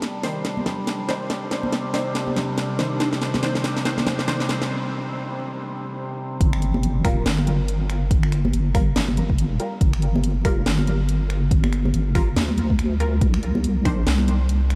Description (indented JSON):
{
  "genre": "deep dubstep",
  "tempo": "141 BPM",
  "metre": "4/4",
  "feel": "swing 58% on 16ths, half-time",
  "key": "G minor",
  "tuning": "A4 = 441 Hz",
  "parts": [
    { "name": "overtone-sweeping drone", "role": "sustained chords", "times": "0.0-6.4 s", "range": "C3 to D4", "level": "-31 LUFS", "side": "equal", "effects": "chorus, built-in reverb" },
    { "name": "garage drum kit", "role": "drums", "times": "0.0-14.8 s", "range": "finger snaps, hi-hat, snare drum", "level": "-31 LUFS", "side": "equal", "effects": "none" },
    { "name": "filtered dub chord stab", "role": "stabs", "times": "0.2-4.5, 7.0-14.1 s", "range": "Eb3 to C5", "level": "-32 LUFS", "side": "equal", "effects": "phaser, lush chorus, dub echo" },
    { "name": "congas", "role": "percussion", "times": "0.6-4.2, 6.7-14.4 s", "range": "none", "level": "-32 LUFS", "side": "equal", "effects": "dub echo" },
    { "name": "deep soft wobble bass", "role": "bass", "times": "6.4-14.8 s", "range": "G1 to D2", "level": "-23 LUFS", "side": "equal", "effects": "chorus" },
    { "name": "electronic kick drum", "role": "drums", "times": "6.4-14.0 s", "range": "none", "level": "-23 LUFS", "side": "equal", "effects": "none" }
  ],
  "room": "moderate huge ambient reverb, RT60 8.2 s",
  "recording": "dreamy mix soaked in reverb, vinyl crackle",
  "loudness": "-22 LUFS",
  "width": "mono",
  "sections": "0.0-6.4 A section; 6.4-14.8 B section",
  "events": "build-up 0.0-6.4; drum fill 0.0-4.7; break 4.7-6.4; drop 6.4-14.8",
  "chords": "0.0 Cmadd9; 6.4 Gm7; 13.2 Cmadd9"
}